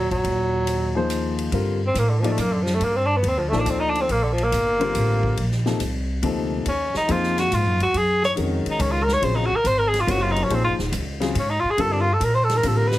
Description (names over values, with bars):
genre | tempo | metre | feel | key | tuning
modal jazz | 140 BPM | 3/4 | swing 68% on 8ths | G phrygian | A4 = 439 Hz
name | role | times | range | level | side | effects
breathy tenor saxophone | melody | 0.0-13.0 s | D3 to Db5 | -21 LUFS | equal | none
breathy bass clarinet | second line | 0.0-1.1 s | Bb2 | -29 LUFS | right 2 dB | none
upright bass | bass | 0.0-13.0 s | Eb1 to Bb2 | -24 LUFS | equal | none
swinging big-band drum kit | drums | 0.1-13.0 s | hi-hat, kick drum, ride cymbal, snare drum | -32 LUFS | left 1 dB | none
warm grand piano | accompaniment | 1.0-13.0 s | C3 to D5 | -26 LUFS | left 4 dB | none
room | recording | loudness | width
light reverb | heavily compressed radio sound | -19 LUFS | side -15 dB against mid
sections
0.0-1.5 A section; 1.5-13.0 B section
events
tenor saxophone solo 1.5-13.0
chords
0.0 Ebmadd9; 1.5 Gm9; 6.7 Ebm9; 11.8 Gm9